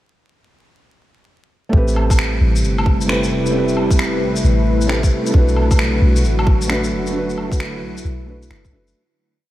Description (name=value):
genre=future garage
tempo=133 BPM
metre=4/4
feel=swing 64% on 16ths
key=A dorian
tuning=A4 = 440 Hz
part: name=felt-muted upright piano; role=accompaniment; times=1.7-9.0 s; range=A3 to B4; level=-22 LUFS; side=right 1 dB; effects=sidechain pumping, analog delay
part: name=warbly tape-like pad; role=sustained chords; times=2.3-8.9 s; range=C3 to B4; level=-21 LUFS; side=left 1 dB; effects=chorus, built-in reverb, sidechain pumping
part: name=soft 808-style bass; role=bass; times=1.7-8.9 s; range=E1 to B1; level=-18 LUFS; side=equal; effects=sidechain pumping
part: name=electronic kick drum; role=drums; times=1.7-8.7 s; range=none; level=-14 LUFS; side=equal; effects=none
part: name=electronic shaker, woodblock and finger snaps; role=drums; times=1.9-8.9 s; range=none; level=-24 LUFS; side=equal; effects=none
room=light reverb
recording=vinyl crackle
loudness=-14 LUFS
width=side -14 dB against mid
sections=1.7-9.0 groove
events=fade-out 6.5-9.0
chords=1.7 Am9; 5.3 Bm7